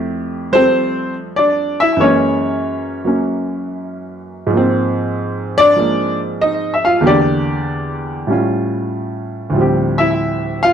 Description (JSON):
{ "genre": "solo jazz", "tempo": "95 BPM", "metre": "4/4", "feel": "swing 68% on 8ths", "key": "unclear", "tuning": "A4 = 438 Hz", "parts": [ { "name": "clear baby grand piano", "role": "solo", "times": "0.0-10.7 s", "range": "D2 to F5", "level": "-14 LUFS", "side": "equal", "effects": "slapback echo" } ], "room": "light reverb", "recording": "dry, close 1970s-style studio recording", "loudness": "-14 LUFS", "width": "side -8 dB against mid", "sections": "0.0-10.7 A section", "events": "none", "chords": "0.0 Fmaj9; 2.0 Gb9; 4.5 Ab69; 7.0 Em7b5; 8.3 A7b13; 9.6 Dm11" }